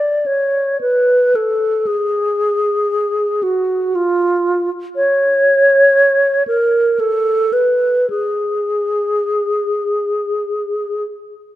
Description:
classical, free, expressive piece for unaccompanied alto flute; 41-61 BPM; 3/4; rubato; A4 = 440 Hz
mellow hollow alto flute; solo; 0.0-11.0 s; E#4 to D5; -14 LUFS; equal
moderate concert hall reverb, RT60 2.2 s; close, detailed microphones; -14 LUFS; side -14 dB against mid
0.0-11.6 A section

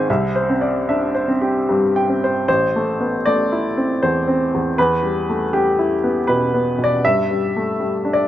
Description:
neoclassical minimalist piano; 78 BPM; 3/4; uneven beats, rubato; A minor; A4 = 439 Hz
clear upright piano; solo; 0.0-8.3 s; A1 to G5; -16 LUFS; equal
light reverb, small room ambience; rough home demo mix; -16 LUFS; side -12 dB against mid
0.0-2.5 A section; 2.5-8.3 B section
0.1 C; 2.5 Am; 4.8 Em; 7.0 G5

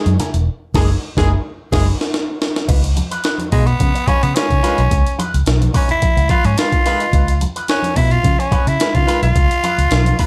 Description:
funk; 108 BPM; 4/4; straight; Db mixolydian; A4 = 440 Hz
warm horn section; second line; 0.0-9.3 s; Ab3 to Cb5; -26 LUFS; equal
electric guitar with an envelope filter; accompaniment; 0.1-10.3 s; Bb3 to Cb5; -29 LUFS; equal; wah
vintage muted fingered electric bass; bass; 0.1-10.1 s; Fb1 to Db3; -18 LUFS; equal
breakbeat sampler-style drum kit; drums; 0.1-10.3 s; crash cymbal, hi-hat, kick drum, snare drum; -20 LUFS; equal
congas; percussion; 0.2-10.3 s; -29 LUFS; equal
raspy tenor saxophone; melody; 3.5-10.3 s; Ab3 to F4; -20 LUFS; equal
light reverb; -16 LUFS; mono
0.0-2.7 A section; 2.7-10.3 B section
band accent 0.5-2.7; drum fill 1.6-2.7; tenor saxophone solo 2.7-10.3
0.0 Gb9; 2.7 Db9

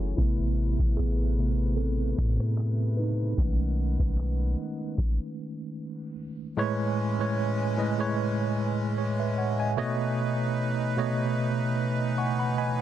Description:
contemporary R&B; 75 BPM; 4/4; swing 54% on 16ths; A4 = 441 Hz
tine electric piano; accompaniment; 0.0-12.8 s; A2 to C#6; -28 LUFS; right 1 dB; medium stereo tremolo
accordion; sustained chords; 0.0-12.8 s; C3 to G#5; -36 LUFS; equal
soft 808-style bass; bass; 0.0-4.6 s; F#1 to A2; -27 LUFS; equal
booming analog drum machine; drums; 0.2-5.2 s; handclaps, hi-hat, kick drum, rim click, snare drum; -25 LUFS; equal
little or no reverb; dense, heavily limited modern master, low-pass filter; -25 LUFS; side -12 dB against mid
0.0-6.6 A section; 6.6-12.8 B section
tine electric piano solo 0.0-6.6; filter sweep 0.0-6.6; stop 5.0-6.6; tine electric piano fill 11.8-12.8
0.2 Amadd9; 3.4 B13; 6.6 Amaj9; 9.8 B9

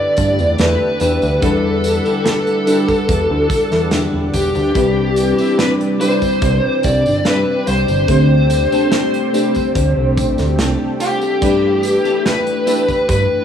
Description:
vaporwave; 72 BPM; 4/4; straight; C lydian; A4 = 440 Hz
smooth overdriven lead guitar; melody; 0.0-13.4 s; G4 to D5; -17 LUFS; left 1 dB; tape echo
FM electric piano with soft pad layer; accompaniment; 0.0-13.4 s; G3 to F#5; -20 LUFS; left 1 dB; wide subtle chorus, tape echo
lush unison pad; sustained chords; 0.0-13.4 s; C3 to F#5; -26 LUFS; equal; chorus
clean electric guitar; riff; 0.2-13.1 s; B3 to B4; -25 LUFS; left 2 dB; ensemble chorus, tape echo
chorused synth bass; bass; 0.2-13.3 s; E1 to G2; -17 LUFS; right 1 dB; tube saturation
kick drum; drums; 0.2-13.3 s; -21 LUFS; right 1 dB
modern studio drum kit; drums; 0.2-13.3 s; crash cymbal, hi-hat, snare drum, tambourine; -24 LUFS; right 2 dB
light reverb, small room ambience; rough home demo mix, studio reverb; -13 LUFS; side -8 dB against mid
0.0-13.4 A section
kick drops out 10.6-11.4
0.0 G69; 1.0 Em9; 4.8 Cmaj9; 8.1 D7sus4; 11.4 G69

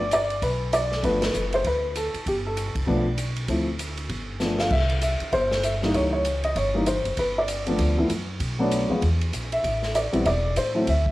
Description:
jazz piano trio; 195 BPM; 4/4; swing 61% on 8ths; G mixolydian; A4 = 440 Hz
warm upright piano; melody; 0.0-11.1 s; E3 to F5; -23 LUFS; equal; cassette tape
upright bass; bass; 0.0-11.1 s; E1 to A2; -27 LUFS; equal
swinging big-band drum kit; drums; 0.1-11.1 s; crash cymbal, hi-hat, kick drum, ride cymbal, snare drum; -31 LUFS; right 1 dB; cassette tape
light reverb, small room ambience; home recording on cassette; -22 LUFS; side -17 dB against mid
0.0-11.1 A section
band accent 1.2; drum fill 4.4-4.7
0.0 Gadd9; 3.5 Dm7; 4.1 G9; 4.7 C; 5.9 C#dim7; 7.2 G9; 8.4 Bm7; 9.0 N.C.; 9.6 Am

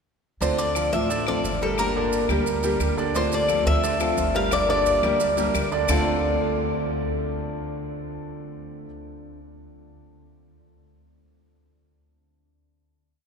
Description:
latin, Cuban son and guajira; 175 BPM; 4/4; straight; D minor; A4 = 440 Hz
Cuban tres; melody; 0.4-8.9 s; A4 to F5; -25 LUFS; left 1 dB
picked steel-string acoustic guitar; accompaniment; 0.4-9.4 s; D3 to G4; -29 LUFS; left 2 dB
bright grand piano; arpeggios; 0.4-8.9 s; D3 to D5; -28 LUFS; right 3 dB
upright bass; bass; 0.4-8.8 s; G1 to D2; -29 LUFS; right 1 dB
maracas; percussion; 0.4-6.0 s; -35 LUFS; right 5 dB
claves; percussion; 0.8-6.0 s; -35 LUFS; left 5 dB
wet cathedral reverb, RT60 5.4 s; recorded in a church or concert hall; -21 LUFS; side -6 dB against mid
0.4-5.9 montuno (vamp); 5.9-8.6 final chord
0.4 Dm7; 1.8 Gm; 3.1 Dm7; 4.5 Gm; 5.9 Dm7

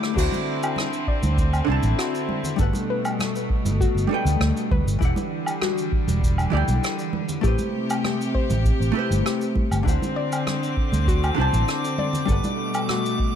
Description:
sunset chillout; 99 BPM; 4/4; straight; A4 = 440 Hz
vintage hollow-body jazz guitar; accompaniment; 0.0-13.4 s; D3 to A5; -27 LUFS; moving between left 5 dB and right 6 dB; auto-pan, ping-pong delay
rich chamber string section; sustained chords; 0.0-13.4 s; B2 to G4; -29 LUFS; left 1 dB
vintage brush drum kit; drums; 0.0-13.2 s; cabasa, crash cymbal, rim click, woodblock; -31 LUFS; right 1 dB
drifting glass-harmonics texture; texture; 0.0-0.2, 10.3-13.4 s; D6; -34 LUFS; left 1 dB; chorus, built-in reverb
soft round pluck; arpeggios; 0.2-13.2 s; F#4 to D5; -32 LUFS; left 7 dB; chorus, ping-pong delay
fretless electric bass; bass; 0.2-12.4 s; E1 to D2; -22 LUFS; right 1 dB; wide subtle chorus
electronic kick drum; drums; 0.2-13.3 s; -24 LUFS; equal
congas; percussion; 0.3-13.0 s; -33 LUFS; right 3 dB
light reverb, small room ambience; -20 LUFS; side -9 dB against mid
0.2-13.4 A section
break 0.0; drum fill 0.0
0.2 D7; 2.6 Gmaj9; 5.0 Em9; 7.4 Am9; 9.9 D7; 12.3 Gmaj9

